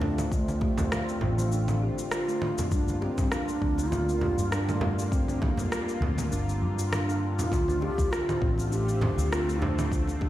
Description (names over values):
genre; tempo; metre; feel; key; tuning
organic downtempo; 100 BPM; 4/4; swing 55% on 16ths; D minor; A4 = 440 Hz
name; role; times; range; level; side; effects
breathy mellow low ney; melody; 0.0-10.3 s; A3 to G4; -32 LUFS; right 1 dB; tape echo
warm analog pad; sustained chords; 0.0-10.3 s; D3 to F4; -35 LUFS; left 1 dB; chorus, sidechain pumping
kalimba; arpeggios; 0.0-10.3 s; A3 to A4; -36 LUFS; equal; tape echo
fretless electric bass; bass; 0.0-10.3 s; G1 to G2; -29 LUFS; equal; tube saturation, sidechain pumping
congas and bongos; percussion; 0.0-10.3 s; none; -34 LUFS; right 1 dB; none
bronze singing bowl; texture; 0.0-10.3 s; D4 to D5; -47 LUFS; left 2 dB; none
electronic congas, cabasa and rim click; drums; 0.2-10.2 s; none; -34 LUFS; right 1 dB; none
electronic kick drum; drums; 0.3-10.3 s; none; -29 LUFS; equal; none
room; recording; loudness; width
light reverb, small room ambience; played on a big sound system in a bare room, large studio reverb; -25 LUFS; side -14 dB against mid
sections
0.0-10.3 A section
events
none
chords
0.0 Dm7; 2.7 Gm7; 7.5 Dm7